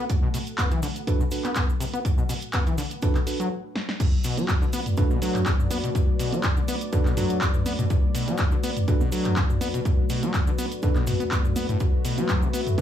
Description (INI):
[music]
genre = acid house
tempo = 123 BPM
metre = 4/4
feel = swing 54% on 16ths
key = B minor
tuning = A4 = 440 Hz
[part]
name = dark analog pad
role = sustained chords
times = 0.0-12.8 s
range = A3 to F#5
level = -33 LUFS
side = left 1 dB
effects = chorus, sidechain pumping
[part]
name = overdriven acid bass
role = riff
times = 0.0-12.8 s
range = A2 to B3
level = -29 LUFS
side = left 1 dB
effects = cassette tape, sidechain pumping, analog delay
[part]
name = electronic kick drum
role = drums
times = 0.1-12.8 s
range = none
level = -24 LUFS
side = left 1 dB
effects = studio reverb
[part]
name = punchy analog drum machine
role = drums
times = 0.1-12.8 s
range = congas, crash cymbal, handclaps, hi-hat, snare drum, toms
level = -29 LUFS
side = right 1 dB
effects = studio reverb
[part]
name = cabasa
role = percussion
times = 0.1-12.8 s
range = none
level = -43 LUFS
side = left 2 dB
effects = none
[part]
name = mellow tine electric piano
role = stabs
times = 1.1-12.8 s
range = D4 to B4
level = -32 LUFS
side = right 6 dB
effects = analog delay
[sound]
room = light reverb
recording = studio ambience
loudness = -22 LUFS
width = side -10 dB against mid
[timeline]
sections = 0.0-4.0 A section; 4.0-12.8 B section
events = break 3.5-4.0; drum fill 3.8; drop 4.0-12.8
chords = 0.0 Bm7